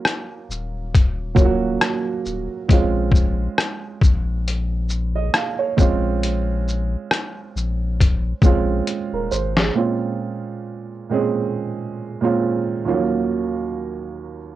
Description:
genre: lo-fi hip hop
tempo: 68 BPM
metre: 4/4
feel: swing 57% on 16ths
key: Bb minor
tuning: A4 = 440 Hz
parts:
  - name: dark upright piano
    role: accompaniment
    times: 0.0-14.6 s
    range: Eb2 to F5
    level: -22 LUFS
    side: right 5 dB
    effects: cassette tape, low-pass filter
  - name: trip hop sampler-style drum kit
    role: drums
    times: 0.1-9.7 s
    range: hi-hat, kick drum, rim click, shaker, snare drum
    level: -17 LUFS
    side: left 2 dB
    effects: cassette tape
  - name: warm sub bass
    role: bass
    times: 0.5-9.7 s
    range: Eb1 to Bb1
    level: -23 LUFS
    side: left 1 dB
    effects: none
room: light reverb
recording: home recording on cassette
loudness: -18 LUFS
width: side -14 dB against mid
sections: 0.0-9.8 A section; 9.8-14.6 B section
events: drum fill 8.9-9.8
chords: 0.0 Ebm7; 2.7 Bbm9; 12.8 Ebm7

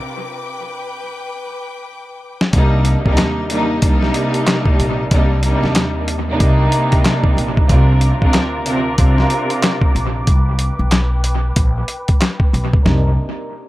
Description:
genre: hip hop, boom-bap hip-hop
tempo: 93 BPM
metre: 4/4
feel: swing 61% on 16ths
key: C minor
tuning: A4 = 440 Hz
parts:
  - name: clear studio string section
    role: sustained chords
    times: 0.0-2.5, 7.7-13.2 s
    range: C3 to D6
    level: -29 LUFS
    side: left 1 dB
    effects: low-pass filter
  - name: dusty soul sampler-style drum kit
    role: drums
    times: 2.4-13.0 s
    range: handclaps, hi-hat, kick drum, snare drum, toms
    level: -16 LUFS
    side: equal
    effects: overdrive, analog delay
  - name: warm studio string section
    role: accompaniment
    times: 2.5-13.1 s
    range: C3 to Bb4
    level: -18 LUFS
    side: right 1 dB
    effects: cassette tape, low-pass filter, analog delay
  - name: upright bass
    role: bass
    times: 2.5-13.2 s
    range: Bb1 to Eb2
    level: -17 LUFS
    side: equal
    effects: none
room: light reverb, small room ambience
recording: echo-heavy mix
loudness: -13 LUFS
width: side -17 dB against mid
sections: 0.0-2.5 A section; 2.5-12.9 B section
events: break 0.0-2.5; drum fill 1.2-2.5; filter sweep 2.5-12.9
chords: 0.0 G; 2.5 Cm7; 7.7 Bbadd9/C; 10.3 G; 12.9 Cm7

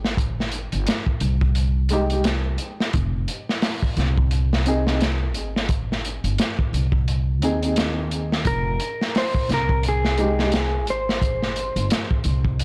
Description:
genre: trip hop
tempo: 87 BPM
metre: 4/4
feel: swing 59% on 16ths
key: F minor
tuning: A4 = 440 Hz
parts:
  - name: upright bass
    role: bass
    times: 0.0-12.6 s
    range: F1 to Eb2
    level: -26 LUFS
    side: equal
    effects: none
  - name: crunchy breakbeat drum kit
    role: drums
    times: 0.0-12.6 s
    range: hi-hat, kick drum, snare drum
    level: -26 LUFS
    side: equal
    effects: none
  - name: felt-muted upright piano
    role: accompaniment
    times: 1.9-10.5 s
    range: Ab3 to Ab4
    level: -28 LUFS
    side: equal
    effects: tremolo, tape echo
  - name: mellow electric guitar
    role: melody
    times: 8.5-11.9 s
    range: Ab4 to C5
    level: -28 LUFS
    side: equal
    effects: tape echo
room: light reverb, small room ambience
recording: blown-out, overdriven recording, vinyl crackle, overdrive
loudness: -22 LUFS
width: mono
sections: 0.0-12.6 A section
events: none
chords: 0.0 Fm7 (rootless)

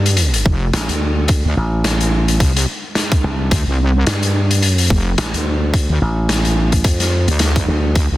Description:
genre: glitch hop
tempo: 108 BPM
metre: 4/4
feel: swing 57% on 16ths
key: D minor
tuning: A4 = 445 Hz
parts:
  - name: slap bass with an envelope filter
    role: bass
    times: 0.0-7.9 s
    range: A1 to G2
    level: -16 LUFS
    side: equal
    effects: none
  - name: raw garage drum kit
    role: drums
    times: 0.1-8.1 s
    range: hi-hat, snare drum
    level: -20 LUFS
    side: left 1 dB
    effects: none
  - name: wobble bass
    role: bass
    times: 0.5-8.2 s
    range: F1 to D2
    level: -16 LUFS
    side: equal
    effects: chorus
  - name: electronic kick drum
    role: drums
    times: 0.5-8.1 s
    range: none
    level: -15 LUFS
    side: equal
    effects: overdrive
room: little or no reverb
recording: dense, heavily limited modern master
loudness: -14 LUFS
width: side -16 dB against mid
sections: 0.0-8.2 A section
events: none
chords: 0.0 Dm7

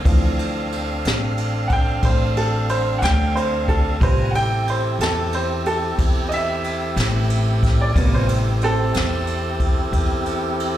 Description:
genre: slow blues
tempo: 61 BPM (dotted quarters)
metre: 12/8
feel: straight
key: A minor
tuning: A4 = 440 Hz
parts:
  - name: tonewheel organ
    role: sustained chords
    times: 0.0-10.8 s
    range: C4 to Bb5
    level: -26 LUFS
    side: equal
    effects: overdrive, stopped rotary speaker
  - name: upright bass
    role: bass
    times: 0.0-10.8 s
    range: A1 to E2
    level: -21 LUFS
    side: equal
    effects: none
  - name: clear baby grand piano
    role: accompaniment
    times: 0.1-9.9 s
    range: C3 to G5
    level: -24 LUFS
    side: right 2 dB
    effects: plate reverb, slapback echo
  - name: jazz brush drum kit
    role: drums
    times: 0.1-10.7 s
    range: kick drum, ride cymbal, snare drum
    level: -24 LUFS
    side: equal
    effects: none
room: light reverb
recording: live gig heard through the venue's PA, club reverb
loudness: -18 LUFS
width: side -12 dB against mid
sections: 0.0-10.8 A section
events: grand piano solo 0.0-10.8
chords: 0.0 Dm7; 4.0 Am7

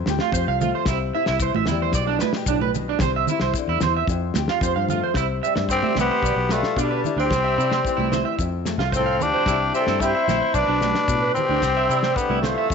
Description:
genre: highlife guitar band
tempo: 111 BPM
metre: 4/4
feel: straight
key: C major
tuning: A4 = 440 Hz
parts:
  - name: flamenco guitar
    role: accompaniment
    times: 0.0-12.7 s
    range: F2 to G4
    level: -28 LUFS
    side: left 14 dB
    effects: none
  - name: fingered electric bass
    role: bass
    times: 0.0-12.7 s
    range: A1 to C3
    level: -26 LUFS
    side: left 1 dB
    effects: none
  - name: damped 70s drum kit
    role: drums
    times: 0.1-12.7 s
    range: kick drum, snare drum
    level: -27 LUFS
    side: left 1 dB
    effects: none
  - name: congas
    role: percussion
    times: 0.1-12.6 s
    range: none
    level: -30 LUFS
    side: right 12 dB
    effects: none
  - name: maracas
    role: percussion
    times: 0.1-12.7 s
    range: none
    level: -35 LUFS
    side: left 19 dB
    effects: none
  - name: electric guitar at the edge of break-up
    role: arpeggios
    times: 0.2-12.7 s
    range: D4 to F5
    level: -25 LUFS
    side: right 11 dB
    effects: lush chorus, slapback echo
  - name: growling tenor saxophone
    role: melody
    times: 5.7-12.7 s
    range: G3 to E4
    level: -22 LUFS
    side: left 1 dB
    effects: none
  - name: warm trumpet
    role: second line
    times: 5.7-12.7 s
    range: D4 to C5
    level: -28 LUFS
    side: left 13 dB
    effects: none
room: moderate plate reverb, RT60 1.2 s, small room ambience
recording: 1960s-style stereo with parts hard left and right, nothing above 7.8 kHz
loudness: -19 LUFS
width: side -6 dB against mid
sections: 0.0-5.2 A section; 5.2-12.7 B section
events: none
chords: 0.0 F; 0.9 C; 1.9 G/B; 3.0 C; 4.1 F; 5.2 C; 6.2 G/B; 7.3 C; 8.4 F; 9.5 C; 10.6 G/B; 11.6 C

